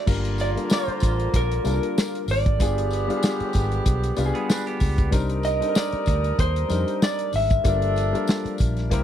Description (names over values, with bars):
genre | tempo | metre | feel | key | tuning
lush 1970s-style soul | 95 BPM | 4/4 | swing 54% on 16ths | G minor | A4 = 440 Hz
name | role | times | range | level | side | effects
electric guitar through a small old amp | melody | 0.0-9.0 s | Bb4 to E5 | -26 LUFS | right 1 dB | vibrato effect
warm baby grand piano | accompaniment | 0.0-9.0 s | G3 to Bb4 | -29 LUFS | left 4 dB | none
electric guitar through a small old amp | riff | 0.0, 4.3-5.1 s | B3 to B4 | -32 LUFS | right 5 dB | none
mellow horn section | stabs | 0.1-9.0 s | D3 to Bb4 | -31 LUFS | right 2 dB | none
vintage muted fingered electric bass | bass | 0.1-9.0 s | G1 to F2 | -25 LUFS | equal | none
warm soul drum kit | drums | 0.1-9.0 s | crash cymbal, hi-hat, kick drum, snare drum | -23 LUFS | equal | none
tambourine | percussion | 0.1-8.7 s | none | -38 LUFS | left 7 dB | none
room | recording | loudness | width
small room ambience | dry, close 1970s-style studio recording | -20 LUFS | side -10 dB against mid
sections
0.1-9.0 A section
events
none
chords
0.1 Gm7; 2.6 G7b9; 5.1 Cm9; 7.7 Gm7